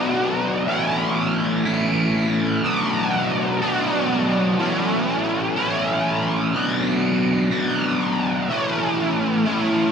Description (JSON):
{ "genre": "rock", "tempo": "61 BPM (dotted quarters)", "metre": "6/8", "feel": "straight", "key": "unclear", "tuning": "A4 = 442 Hz", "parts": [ { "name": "cranked stack guitar", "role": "solo", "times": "0.0-9.9 s", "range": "A2 to F#4", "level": "-18 LUFS", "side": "equal", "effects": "overdrive, flanger, ping-pong delay" } ], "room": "wet huge ambient reverb, RT60 8.0 s", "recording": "dreamy mix soaked in reverb", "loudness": "-18 LUFS", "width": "side -7 dB against mid", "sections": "0.0-8.5 A section; 8.5-9.9 B section", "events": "none", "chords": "0.0 Bm; 0.7 A; 2.6 Bm; 4.6 A; 6.5 Bm; 8.5 A", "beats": "| 0.68 1.66 | 2.63 3.61 | 4.59 5.57 | 6.55 7.52 | 8.50 9.48" }